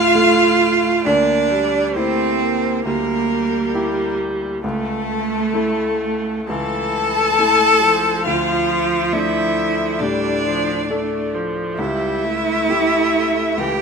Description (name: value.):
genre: classical, slow romantic movement for piano quartet.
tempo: 67 BPM.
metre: 4/4.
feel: rubato.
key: D minor.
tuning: A4 = 438 Hz.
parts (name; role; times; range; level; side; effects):
rich violin; melody; 0.0-13.8 s; A4 to A5; -22 LUFS; left 7 dB; none.
bright cello; second line; 0.0-13.8 s; A3 to A4; -18 LUFS; right 4 dB; none.
clear baby grand piano; accompaniment; 0.0-13.8 s; C#2 to A4; -24 LUFS; left 1 dB; none.
rich viola; accompaniment; 0.0-13.8 s; E3 to Bb3; -25 LUFS; right 1 dB; none.
room: moderate studio reverb, RT60 0.9 s.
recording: minimal, uncompressed stereo recording.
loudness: -16 LUFS.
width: side -5 dB against mid.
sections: 0.0-13.8 A section.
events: none.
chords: 0.0 Dm; 1.1 Em7b5/D; 4.6 A/C#; 8.3 Dm; 11.8 A7/C#.